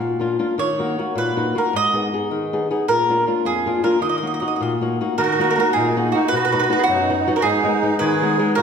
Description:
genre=italian folk, Italian serenade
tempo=105 BPM (dotted quarters)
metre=6/8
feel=rubato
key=Eb minor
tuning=A4 = 441 Hz
part: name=flamenco guitar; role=accompaniment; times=0.0-8.6 s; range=F2 to Ab4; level=-20 LUFS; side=left 2 dB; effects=none
part: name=mandolin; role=melody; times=0.6-8.6 s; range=Gb4 to Eb5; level=-20 LUFS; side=right 2 dB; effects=none
part: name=musette accordion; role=second line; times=5.2-8.6 s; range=Eb4 to Ab4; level=-21 LUFS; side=right 4 dB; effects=none
room=wet recital hall reverb, RT60 1.4 s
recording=recorded in a church or concert hall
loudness=-17 LUFS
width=side -6 dB against mid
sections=0.0-5.2 A section; 5.2-8.6 A section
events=none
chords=0.0 Bb; 0.6 Ebm; 1.7 Abm; 2.9 Bb; 4.0 Ebm; 6.3 B; 7.4 Abm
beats=| 0.57 1.16 | 1.74 2.31 | 2.88 3.44 | 4.01 4.59 | 5.17 5.75 | 6.31 6.87 | 7.43 8.00 | 8.57

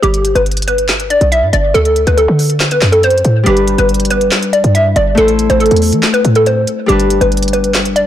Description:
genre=hip hop, trap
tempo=140 BPM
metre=4/4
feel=half-time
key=G major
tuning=A4 = 440 Hz
part: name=hollow square pluck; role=melody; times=0.0-8.1 s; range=G4 to E5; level=-12 LUFS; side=equal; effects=chorus, ping-pong delay
part: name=short 808-style bass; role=bass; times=0.0-8.0 s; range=G1 to E3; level=-14 LUFS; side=equal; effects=none
part: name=trap drum kit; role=drums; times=0.0-8.1 s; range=handclaps, hi-hat, snare drum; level=-18 LUFS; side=equal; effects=none
part: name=Celtic harp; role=accompaniment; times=3.4-8.1 s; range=G3 to C5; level=-16 LUFS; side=left 3 dB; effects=none
room=light reverb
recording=blown-out, overdriven recording, overdrive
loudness=-9 LUFS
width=side -11 dB against mid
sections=0.0-8.1 A section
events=break 0.0-3.5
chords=0.0 G; 1.7 D; 3.5 G; 5.2 Am; 6.9 G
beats=| 0.03 0.46 0.89 1.32 | 1.75 2.18 2.60 3.03 | 3.46 3.89 4.32 4.75 | 5.18 5.60 6.03 6.46 | 6.89 7.32 7.75

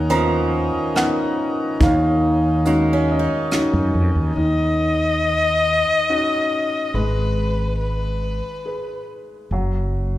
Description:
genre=acoustic folk-pop ballad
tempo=70 BPM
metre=3/4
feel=straight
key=Eb minor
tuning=A4 = 445 Hz
part: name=felt-muted upright piano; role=melody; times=0.0-10.2 s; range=D#3 to A#5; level=-22 LUFS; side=left 1 dB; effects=none
part: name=pedal harmonium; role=sustained chords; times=0.0-4.3 s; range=Eb3 to A#4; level=-29 LUFS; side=equal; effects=none
part: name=mellow fretless electric bass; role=bass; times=0.0-10.2 s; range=Gb1 to Gb2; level=-22 LUFS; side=equal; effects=none
part: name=picked steel-string acoustic guitar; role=arpeggios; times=0.1-5.2 s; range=F3 to Eb4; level=-27 LUFS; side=right 3 dB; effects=none
part: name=soft brush drum kit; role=drums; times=0.1-3.7 s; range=hi-hat, kick drum, rim click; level=-21 LUFS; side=equal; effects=none
part: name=rich violin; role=second line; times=4.4-9.0 s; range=Cb5 to Eb5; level=-20 LUFS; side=left 2 dB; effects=none
room=wet recital hall reverb, RT60 1.9 s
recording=heard from further back in the room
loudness=-17 LUFS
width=side -14 dB against mid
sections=0.0-4.4 A section; 4.4-10.2 B section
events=violin solo 4.4-10.2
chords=0.0 Bmaj9/D#; 1.8 Ebm7; 6.9 Abm; 9.5 N.C.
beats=0.10 0.95 | 1.80 2.66 3.52 | 4.37 5.23 6.09 | 6.94 7.80 8.66 | 9.51

